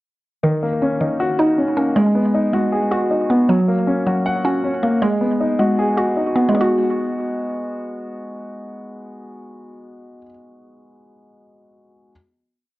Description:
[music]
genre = hip hop, trap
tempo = 157 BPM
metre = 4/4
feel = half-time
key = G# minor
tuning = A4 = 437 Hz
[part]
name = dark baby grand piano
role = accompaniment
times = 0.4-12.1 s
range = D#3 to F#5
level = -20 LUFS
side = left 1 dB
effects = low-pass filter
[part]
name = mallet-like synth pluck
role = arpeggios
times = 0.4-10.3 s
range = D#3 to F#4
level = -19 LUFS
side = right 1 dB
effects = chorus, low-pass filter, analog delay
[sound]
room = wet studio reverb, RT60 0.6 s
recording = worn, warbling old tape, cassette tape, warbly pitch drift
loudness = -16 LUFS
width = side -18 dB against mid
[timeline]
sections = 0.4-6.5 breakdown; 6.5-9.6 final chord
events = none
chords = 0.4 D#m7; 2.0 G#m7; 3.5 F#; 5.0 G#m7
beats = | 0.43 0.82 1.20 1.58 | 1.96 2.35 2.73 3.11 | 3.49 3.87 4.26 4.64 | 5.02 5.40 5.78 6.17 | 6.55 6.93 7.31 7.70 | 8.08 8.46 8.84 9.22

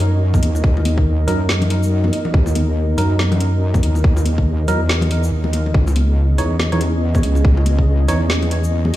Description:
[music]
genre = deep dubstep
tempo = 141 BPM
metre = 4/4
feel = swing 59% on 16ths, half-time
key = Eb phrygian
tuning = A4 = 440 Hz
[part]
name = dark analog pad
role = sustained chords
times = 0.0-9.0 s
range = Db4 to Eb5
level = -25 LUFS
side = equal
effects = chorus
[part]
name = wobble bass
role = bass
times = 0.0-8.9 s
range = Db2 to Gb2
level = -16 LUFS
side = equal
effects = chorus
[part]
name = garage drum kit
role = drums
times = 0.0-9.0 s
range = hi-hat, shaker, snare drum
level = -26 LUFS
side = equal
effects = none
[part]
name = electronic kick drum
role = drums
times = 0.3-7.9 s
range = none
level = -15 LUFS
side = equal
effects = none
[part]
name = congas and bongos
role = percussion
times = 0.3-9.0 s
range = none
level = -25 LUFS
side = left 2 dB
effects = dub echo
[part]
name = percussive organ stab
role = stabs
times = 1.3-8.2 s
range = Fb3 to Db5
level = -26 LUFS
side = right 2 dB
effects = chorus, dub echo
[sound]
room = digital ambience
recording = played on a big sound system in a bare room, large studio reverb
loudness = -14 LUFS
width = side -14 dB against mid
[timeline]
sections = 0.0-9.0 A section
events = none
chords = 0.0 Ebm; 5.7 Dbmadd9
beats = 0.21 | 0.64 1.06 1.49 1.91 | 2.34 2.77 3.19 3.62 | 4.04 4.47 4.89 5.32 | 5.74 6.17 6.59 7.02 | 7.45 7.87 8.30 8.72

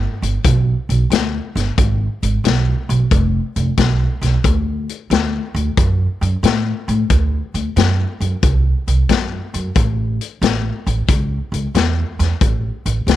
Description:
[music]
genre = electric blues shuffle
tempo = 90 BPM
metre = 4/4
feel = swing 67% on 8ths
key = unclear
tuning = A4 = 440 Hz
[part]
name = upright bass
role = bass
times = 0.0-13.2 s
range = F1 to A2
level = -17 LUFS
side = right 1 dB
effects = none
[part]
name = vintage drum kit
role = drums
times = 0.2-13.2 s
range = hi-hat, kick drum, snare drum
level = -18 LUFS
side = left 3 dB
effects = none
[sound]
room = little or no reverb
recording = 1960s-style stereo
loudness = -15 LUFS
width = side -13 dB against mid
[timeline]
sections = 0.0-13.2 A section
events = none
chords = none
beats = 0.44 1.11 | 1.77 2.44 3.10 3.77 | 4.43 5.10 5.77 6.43 | 7.10 7.76 8.43 9.09 | 9.76 10.42 11.08 11.75 | 12.41 13.07

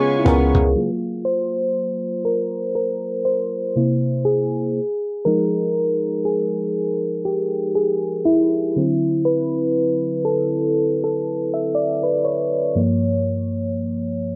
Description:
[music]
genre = contemporary R&B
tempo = 60 BPM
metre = 4/4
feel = swing 58% on 16ths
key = unclear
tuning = A4 = 440 Hz
[part]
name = mellow FM electric piano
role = accompaniment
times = 0.0-14.4 s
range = G2 to E5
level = -21 LUFS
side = equal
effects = chorus, cassette tape
[part]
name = warm studio string section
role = sustained chords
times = 0.0-0.7 s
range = Cb4 to Db6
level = -30 LUFS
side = equal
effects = cassette tape
[part]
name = flamenco guitar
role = arpeggios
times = 0.0-0.9 s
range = Db3 to F4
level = -25 LUFS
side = equal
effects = cassette tape, analog delay
[part]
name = long sustained 808-style bass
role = bass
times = 0.3-0.7 s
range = Db2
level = -21 LUFS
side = equal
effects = none
[part]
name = cajon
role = drums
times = 0.3-0.7 s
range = none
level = -25 LUFS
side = equal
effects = cassette tape
[sound]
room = light reverb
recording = home recording on cassette, low-pass filter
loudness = -21 LUFS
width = mono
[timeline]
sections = 0.8-14.4 A section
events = FM electric piano solo 0.8-14.4; filter sweep 0.8-14.4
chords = 0.0 Db7; 0.8 Gbmaj7; 3.8 C7; 4.8 Fm7; 8.8 D7; 12.8 Gm7b5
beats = | 0.76 1.76 2.76 3.76 | 4.76 5.76 6.76 7.76 | 8.76 9.76 10.76 11.76 | 12.76 13.76

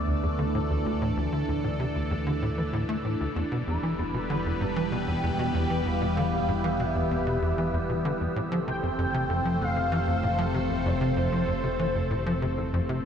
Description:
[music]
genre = ambient, sequencer-driven space music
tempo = 96 BPM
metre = 4/4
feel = straight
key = unclear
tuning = A4 = 440 Hz
[part]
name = phased analog pad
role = sustained chords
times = 0.0-13.1 s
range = C3 to D5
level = -30 LUFS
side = equal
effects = phaser, chorus
[part]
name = fat analog bass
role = bass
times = 0.0-13.1 s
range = E1 to D2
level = -32 LUFS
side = equal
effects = none
[part]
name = wind-like tuned noise texture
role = texture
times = 0.0-13.1 s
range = E3 to E6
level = -40 LUFS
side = equal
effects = built-in reverb
[part]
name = tight sequencer bass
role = riff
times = 0.1-13.0 s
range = D2 to A3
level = -29 LUFS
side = equal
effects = wide subtle chorus, ping-pong delay
[part]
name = expressive portamento lead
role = melody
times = 3.7-12.7 s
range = C5 to B5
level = -32 LUFS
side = equal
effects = ensemble chorus, ping-pong delay
[sound]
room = wet cathedral reverb, RT60 6.6 s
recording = dreamy mix soaked in reverb, nothing above 11.0 kHz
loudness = -25 LUFS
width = side -8 dB against mid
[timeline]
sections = 0.0-13.1 A section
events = fade-in on synth texture 0.0-13.1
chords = 0.0 Dsus2; 3.4 Em; 8.4 F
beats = 0.23 | 0.86 1.48 2.11 2.73 | 3.36 3.98 4.61 5.23 | 5.86 6.48 7.11 7.73 | 8.36 8.98 9.61 10.23 | 10.86 11.48 12.11 12.73

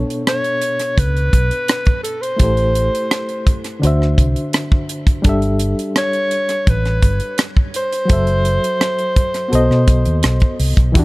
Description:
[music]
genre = lush 1970s-style soul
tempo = 84 BPM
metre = 4/4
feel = straight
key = B minor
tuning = A4 = 440 Hz
[part]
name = barky reed electric piano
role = accompaniment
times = 0.0-11.0 s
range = B2 to E5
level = -22 LUFS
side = left 1 dB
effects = fast tremolo
[part]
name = vintage muted fingered electric bass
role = bass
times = 0.0-11.0 s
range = F#1 to B2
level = -16 LUFS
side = equal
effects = none
[part]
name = tight funk drum kit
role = drums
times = 0.1-11.0 s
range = hi-hat, kick drum, rim click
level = -16 LUFS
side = equal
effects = none
[part]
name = breathy alto saxophone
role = melody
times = 0.3-10.6 s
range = A4 to C#5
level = -20 LUFS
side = equal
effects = none
[sound]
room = small room ambience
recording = dark, warm production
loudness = -14 LUFS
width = side -21 dB against mid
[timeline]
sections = 0.0-11.0 A section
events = none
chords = 0.0 Bm7; 2.4 Am7; 3.8 D9; 5.2 G69; 8.1 F#m7b5; 9.5 B7b9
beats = 0.26 0.97 1.69 | 2.40 3.11 3.83 4.54 | 5.25 5.96 6.67 7.39 | 8.10 8.81 9.53 10.24 | 10.95

